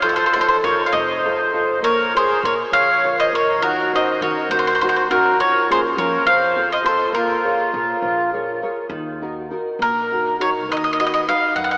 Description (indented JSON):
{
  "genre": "italian folk, Italian serenade",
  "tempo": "68 BPM (dotted quarters)",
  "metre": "6/8",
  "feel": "straight",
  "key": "Bb minor",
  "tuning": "A4 = 440 Hz",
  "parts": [
    { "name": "bowl-back mandolin", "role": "melody", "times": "0.0-11.8 s", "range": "Bb4 to F#5", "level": "-17 LUFS", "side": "equal", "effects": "diffuse ambient delay" },
    { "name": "accordion", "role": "second line", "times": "0.0-8.3 s", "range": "F4 to Db5", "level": "-21 LUFS", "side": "equal", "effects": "light tremolo tuning, diffuse ambient delay" },
    { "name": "nylon-string guitar", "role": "accompaniment", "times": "0.0-11.8 s", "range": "C3 to Db5", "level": "-24 LUFS", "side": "equal", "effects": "lush chorus" },
    { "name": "upright bass", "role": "bass", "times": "0.0-11.8 s", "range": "F1 to F3", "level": "-39 LUFS", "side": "equal", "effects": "none" }
  ],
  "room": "wet lush hall reverb, RT60 2.8 s",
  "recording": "dreamy mix soaked in reverb, AM radio sound",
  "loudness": "-16 LUFS",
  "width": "side -28 dB against mid",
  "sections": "0.0-8.9 A section; 8.9-11.8 B section",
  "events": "none",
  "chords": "0.0 F7; 1.8 Bbm; 3.6 Ebm7; 5.4 Bbm/F; 6.3 F; 7.1 Bbm7; 8.9 Ebm; 10.7 B/D#",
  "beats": "| 0.04 0.93 | 1.83 2.73 | 3.62 4.51 | 5.39 6.26 | 7.14 8.02 | 8.90 9.79 | 10.68 11.56"
}